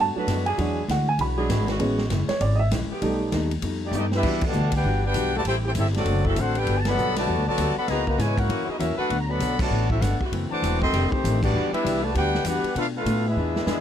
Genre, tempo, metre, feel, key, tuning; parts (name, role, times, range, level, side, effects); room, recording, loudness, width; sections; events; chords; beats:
jazz, big band swing; 197 BPM; 4/4; swing 62% on 8ths; E minor; A4 = 440 Hz
hollow-body jazz guitar; accompaniment; 0.0-13.8 s; F2 to A4; -32 LUFS; left 5 dB
warm baby grand piano; accompaniment; 0.0-3.5 s; F#3 to B5; -25 LUFS; right 3 dB
upright bass; bass; 0.0-13.8 s; E1 to B2; -25 LUFS; equal
bright saxophone section; sustained chords; 0.2-13.8 s; D#3 to B4; -32 LUFS; equal
swinging big-band drum kit; drums; 0.3-13.8 s; crash cymbal, hi-hat, kick drum, ride cymbal, snare drum; -31 LUFS; equal
warm trumpet section; melody; 3.9-13.8 s; A3 to D6; -26 LUFS; left 1 dB
clear trombone section; second line; 3.9-13.8 s; B2 to G4; -29 LUFS; left 1 dB
little or no reverb; -21 LUFS; side -9 dB against mid
0.0-4.2 A section; 4.2-13.8 B section
grand piano solo 0.0-4.2; drum fill 3.9-4.2, 13.4-13.8; band accent 4.4, 6.8, 9.6, 11.4
0.0 Bm7; 0.6 E9; 1.8 Amaj7; 3.0 B7alt; 4.2 Em9; 5.4 Am7; 6.1 D7; 6.7 Gmaj9; 7.9 C#m7; 8.5 F#7; 9.1 Bm7; 10.3 F#m7b5; 10.9 F13; 11.5 Em9; 12.8 Bm7b5
0.27 | 0.58 0.88 1.19 1.49 | 1.79 2.10 2.40 2.71 | 3.01 3.32 3.62 3.92 | 4.23 4.53 4.84 5.14 | 5.45 5.75 6.05 6.36 | 6.67 6.97 7.27 7.58 | 7.88 8.19 8.49 8.80 | 9.10 9.41 9.71 10.02 | 10.32 10.62 10.93 11.23 | 11.54 11.84 12.15 12.45 | 12.76 13.06 13.37 13.67